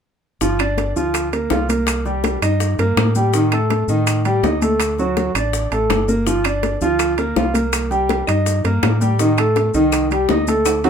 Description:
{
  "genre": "latin, salsa",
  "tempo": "164 BPM",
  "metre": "4/4",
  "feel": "straight",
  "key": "G minor",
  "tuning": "A4 = 436 Hz",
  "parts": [
    { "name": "clear grand piano", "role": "accompaniment", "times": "0.4-10.9 s", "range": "Eb3 to F5", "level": "-18 LUFS", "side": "right 1 dB", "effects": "none" },
    { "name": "deep dub fingered electric bass", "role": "bass", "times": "0.4-10.9 s", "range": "G1 to A2", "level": "-21 LUFS", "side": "equal", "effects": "none" },
    { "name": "bongos", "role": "percussion", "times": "0.4-10.9 s", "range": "none", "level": "-26 LUFS", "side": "left 7 dB", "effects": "none" },
    { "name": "congas", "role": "percussion", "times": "0.4-10.9 s", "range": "none", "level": "-25 LUFS", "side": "left 3 dB", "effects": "none" },
    { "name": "maracas", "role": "percussion", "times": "0.4-10.9 s", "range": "none", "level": "-31 LUFS", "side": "left 6 dB", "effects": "none" },
    { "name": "claves", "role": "percussion", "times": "0.6-10.8 s", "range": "none", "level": "-30 LUFS", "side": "left 5 dB", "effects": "none" },
    { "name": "timbales", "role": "percussion", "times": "0.6-10.9 s", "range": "none", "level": "-25 LUFS", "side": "right 8 dB", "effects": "none" }
  ],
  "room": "light reverb",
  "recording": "minimal, uncompressed stereo recording",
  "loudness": "-15 LUFS",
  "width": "side -7 dB against mid",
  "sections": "0.4-10.9 A section",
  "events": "drum fill 10.7",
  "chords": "0.4 Gm7; 1.9 Cm7; 3.3 Ebmaj7#11; 4.8 D; 6.3 Gm7; 7.7 Cm7; 9.2 Am7b5",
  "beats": "| 0.41 0.78 1.14 1.51 | 1.88 2.24 2.61 2.97 | 3.34 3.71 4.07 4.44 | 4.80 5.17 5.54 5.90 | 6.27 6.63 7.00 7.37 | 7.73 8.10 8.46 8.83 | 9.20 9.56 9.93 10.29 | 10.66"
}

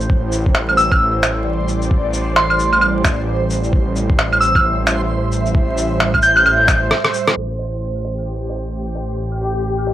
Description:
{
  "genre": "future garage",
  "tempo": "132 BPM",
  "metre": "4/4",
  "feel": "swing 61% on 16ths",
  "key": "A minor",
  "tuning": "A4 = 440 Hz",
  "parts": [
    { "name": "airy breathy pad", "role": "sustained chords", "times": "0.0-9.9 s", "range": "A2 to G5", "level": "-24 LUFS", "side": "right 2 dB", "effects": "chorus, phaser, sidechain pumping" },
    { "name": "swelling detuned saw bass", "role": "bass", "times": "0.0-9.9 s", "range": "A1", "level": "-21 LUFS", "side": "equal", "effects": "sidechain pumping" },
    { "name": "lo-fi sampler-style drum kit", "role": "drums", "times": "0.0-9.9 s", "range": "claves, finger snaps, hi-hat, rim click, shaker", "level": "-17 LUFS", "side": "right 1 dB", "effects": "overdrive, low-pass filter on perc, low-pass filter on snare, low-pass filter on hats, low-pass filter on room" },
    { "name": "electronic kick drum", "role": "drums", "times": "0.1-6.8 s", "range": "none", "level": "-16 LUFS", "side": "equal", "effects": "overdrive" },
    { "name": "backwards swelling texture", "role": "texture", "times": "1.5-9.9 s", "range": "G4 to C5", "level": "-27 LUFS", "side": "right 1 dB", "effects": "built-in reverb" },
    { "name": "soft synth bell", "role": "melody", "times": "0.8-6.7 s", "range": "C6 to G6", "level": "-16 LUFS", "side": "equal", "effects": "chorus, tape echo" }
  ],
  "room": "light reverb",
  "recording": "dry, gritty hardware recording, transformer saturation, vinyl crackle, low-pass filter",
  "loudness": "-14 LUFS",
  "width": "side -13 dB against mid",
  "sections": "0.0-7.4 A section; 7.4-9.9 B section",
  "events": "break 6.9-7.4; drum fill 6.9-7.4; band accent 7.3; filter sweep on analog synth pad 7.4-9.9; filter sweep 7.4-9.9",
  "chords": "0.0 Am7",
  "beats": "| 0.09 0.55 1.00 1.46 | 1.91 2.37 2.82 3.28 | 3.73 4.18 4.64 5.09 | 5.55 6.00 6.46 6.91 | 7.37 7.82 8.28 8.73 | 9.19 9.64"
}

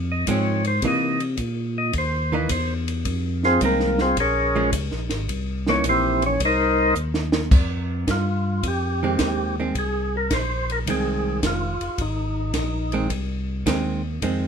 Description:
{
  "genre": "soul jazz organ trio",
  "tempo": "108 BPM",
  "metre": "4/4",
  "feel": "swing 68% on 8ths",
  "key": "F minor",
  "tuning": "A4 = 441 Hz",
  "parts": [
    { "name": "tonewheel organ", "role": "bass", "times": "0.0-14.5 s", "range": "F1 to C3", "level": "-25 LUFS", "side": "equal", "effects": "slow rotary speaker" },
    { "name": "percussive tonewheel organ", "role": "melody", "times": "0.1-13.1 s", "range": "Bb3 to Eb5", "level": "-23 LUFS", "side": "equal", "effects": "slow rotary speaker" },
    { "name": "archtop guitar, miked and amplified", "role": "accompaniment", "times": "0.3-14.5 s", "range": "Eb3 to D#4", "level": "-25 LUFS", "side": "right 3 dB", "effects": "none" },
    { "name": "compact cocktail drum kit", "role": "drums", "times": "0.3-14.4 s", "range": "crash cymbal, hi-hat, kick drum, ride cymbal, snare drum", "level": "-25 LUFS", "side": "equal", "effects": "none" }
  ],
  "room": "moderate small room reverb, RT60 0.6 s",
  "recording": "minimal, uncompressed stereo recording",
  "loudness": "-20 LUFS",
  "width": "side -7 dB against mid",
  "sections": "0.0-7.5 A section; 7.5-14.5 B section",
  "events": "tonewheel organ solo 0.0-7.5; drum fill 7.0-7.5",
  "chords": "0.0 Dbmaj7; 0.8 C7#9; 3.1 Fm7; 4.2 Bbm7; 5.3 C7#9; 7.5 Fm7",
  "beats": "0.27 | 0.83 1.39 1.95 2.50 | 3.06 3.62 4.17 4.73 | 5.29 5.85 6.41 6.96 | 7.52 8.08 8.64 9.20 | 9.75 10.31 10.87 11.43 | 11.99 12.55 13.11 13.66 | 14.22"
}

